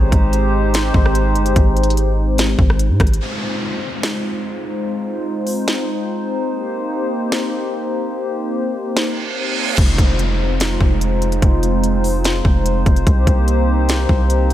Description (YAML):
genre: hip hop, atmospheric cloud-rap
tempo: 146 BPM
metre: 4/4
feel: half-time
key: F minor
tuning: A4 = 440 Hz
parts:
  - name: hollow soft pad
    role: sustained chords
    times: 0.0-14.5 s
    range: Ab3 to C5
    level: -20 LUFS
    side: left 1 dB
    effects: chorus, sidechain pumping
  - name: warm 808-style bass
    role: bass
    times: 0.0-3.2, 9.8-14.5 s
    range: F1 to Ab2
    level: -17 LUFS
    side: equal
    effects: none
  - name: trap drum kit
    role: drums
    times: 0.1-14.5 s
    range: crash cymbal, hi-hat, kick drum, rim click, snare drum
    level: -17 LUFS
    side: equal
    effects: none
  - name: downlifter and reverse cymbal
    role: sound effects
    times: 3.2-13.1 s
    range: none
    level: -25 LUFS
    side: right 2 dB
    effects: none
room: light reverb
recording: bright 1980s-style digital production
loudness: -15 LUFS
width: side -12 dB against mid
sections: 0.0-3.2 A section; 3.2-9.8 B section; 9.8-14.5 C section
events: reverse cymbal 9.1-9.8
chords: 0.0 Abmaj7; 3.2 Fm7; 6.5 Cm7; 9.8 Fm7; 13.1 Cm7